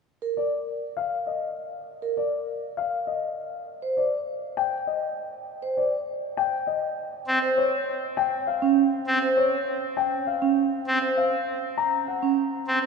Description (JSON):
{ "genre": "classical, minimalist pattern music", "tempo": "100 BPM", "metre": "3/4", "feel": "straight", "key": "unclear", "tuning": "A4 = 439 Hz", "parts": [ { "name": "vibraphone with soft mallets", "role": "arpeggios", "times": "0.2-12.9 s", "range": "Db4 to C5", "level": "-26 LUFS", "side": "right 4 dB", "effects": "none" }, { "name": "dark grand piano", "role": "melody", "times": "0.4-12.3 s", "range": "Db5 to Bb5", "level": "-28 LUFS", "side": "left 6 dB", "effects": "none" }, { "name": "pipe organ, trumpet", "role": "accompaniment", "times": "7.3-12.8 s", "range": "C4", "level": "-28 LUFS", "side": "equal", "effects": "none" } ], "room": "wet cathedral reverb, RT60 5.6 s", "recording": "recorded in a church or concert hall", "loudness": "-23 LUFS", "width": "side -4 dB against mid", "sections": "0.1-12.9 A section", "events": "none", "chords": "none", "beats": "| 0.07 0.67 1.27 | 1.87 2.47 3.07 | 3.67 4.27 4.87 | 5.47 6.07 6.67 | 7.27 7.87 8.47 | 9.07 9.67 10.27 | 10.87 11.47 12.07 | 12.67" }